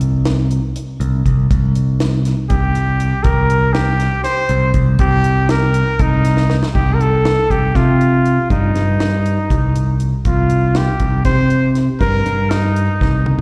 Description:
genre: progressive instrumental, band music in an uneven meter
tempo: 240 BPM (eighths)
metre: 7/8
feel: straight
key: C dorian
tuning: A4 = 440 Hz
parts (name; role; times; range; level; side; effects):
- picked electric bass; bass; 0.0-13.4 s; C2 to C3; -17 LUFS; equal; none
- deep reggae drum kit; drums; 0.0-13.4 s; crash cymbal, hi-hat, kick drum, snare drum, toms; -22 LUFS; equal; none
- bright trumpet; melody; 2.5-13.4 s; Eb4 to C5; -21 LUFS; equal; slapback echo
room: small room reverb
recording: live gig heard through the venue's PA, recital hall reverb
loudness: -15 LUFS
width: mono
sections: 0.0-6.7 A section; 6.7-13.4 B section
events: drum fill 6.4-6.7, 13.0-13.4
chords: 0.0 C5; 6.7 Cm

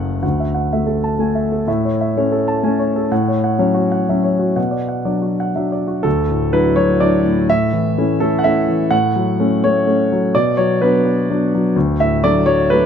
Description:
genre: neoclassical minimalist piano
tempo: 126 BPM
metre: 3/4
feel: rubato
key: unclear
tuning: A4 = 440 Hz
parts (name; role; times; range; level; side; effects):
- warm concert grand piano; solo; 0.0-12.9 s; F#1 to A5; -14 LUFS; equal; none
room: light reverb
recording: dark, warm production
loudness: -14 LUFS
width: side -7 dB against mid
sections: 0.2-6.1 A section; 6.1-12.9 B section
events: none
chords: 0.2 Dadd9; 1.7 A; 3.1 F#m/A; 4.6 Bm; 6.1 Dadd9; 7.5 A; 8.9 F#m/A; 10.3 Bm; 11.8 D

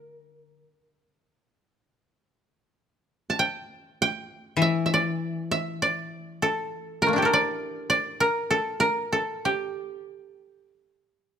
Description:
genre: japanese traditional, Japanese chamber music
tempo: 49 BPM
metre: 2/4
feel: rubato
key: unclear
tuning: A4 = 441 Hz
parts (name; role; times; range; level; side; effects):
- koto; melody; 0.0-11.4 s; A3 to A5; -24 LUFS; right 1 dB; none
- koto; accompaniment; 0.0-0.6, 4.6-7.9 s; D3 to E3; -27 LUFS; left 4 dB; none
room: light reverb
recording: close, detailed microphones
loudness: -23 LUFS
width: side -8 dB against mid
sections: 0.0-11.4 A section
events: none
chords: none

